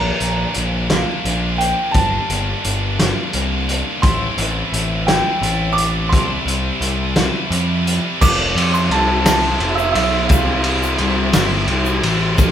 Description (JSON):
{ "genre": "indie rock", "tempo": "58 BPM (dotted quarters)", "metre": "6/8", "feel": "straight", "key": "F major", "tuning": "A4 = 440 Hz", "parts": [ { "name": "bright upright piano", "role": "melody", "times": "0.0-11.0 s", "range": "E5 to D6", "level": "-21 LUFS", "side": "right 2 dB", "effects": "none" }, { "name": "high-gain distorted guitar", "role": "riff", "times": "0.0-12.5 s", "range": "E3 to A4", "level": "-26 LUFS", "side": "left 8 dB", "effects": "distortion" }, { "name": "scooped high-gain guitar", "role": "riff", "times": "0.0-12.5 s", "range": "F2 to Bb4", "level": "-24 LUFS", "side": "right 4 dB", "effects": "distortion" }, { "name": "fuzz picked electric bass", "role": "bass", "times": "0.0-12.5 s", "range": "F1 to F2", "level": "-21 LUFS", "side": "equal", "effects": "overdrive" }, { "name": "loose indie drum kit", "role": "drums", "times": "0.2-12.5 s", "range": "crash cymbal, hi-hat, kick drum, ride cymbal, snare drum", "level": "-18 LUFS", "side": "equal", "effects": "none" }, { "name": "analog string pad", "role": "sustained chords", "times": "8.7-12.5 s", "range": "F4 to A5", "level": "-33 LUFS", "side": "right 1 dB", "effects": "none" }, { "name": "egg shaker", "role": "percussion", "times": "8.2-12.5 s", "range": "none", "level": "-32 LUFS", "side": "left 9 dB", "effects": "none" } ], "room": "moderate large studio reverb, RT60 1.2 s", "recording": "band playing live in one room", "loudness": "-15 LUFS", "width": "side -9 dB against mid", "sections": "0.0-8.2 A section; 8.2-12.5 B section", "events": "none", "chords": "0.0 Bb; 1.9 Gm; 4.0 Am7; 6.1 C; 8.2 Fmaj7; 10.3 C7sus4" }